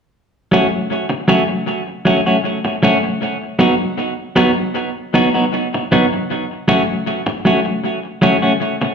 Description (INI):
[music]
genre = reggae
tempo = 78 BPM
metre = 4/4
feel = straight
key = F# dorian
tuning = A4 = 440 Hz
[part]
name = clean electric guitar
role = accompaniment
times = 0.5-8.9 s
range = F#3 to F#4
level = -14 LUFS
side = equal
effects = tape echo
[sound]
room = wet large studio reverb, RT60 1.2 s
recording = band playing live in one room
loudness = -14 LUFS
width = side -6 dB against mid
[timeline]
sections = 0.1-8.9 A section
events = none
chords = 0.1 F#m; 3.2 B; 6.3 F#m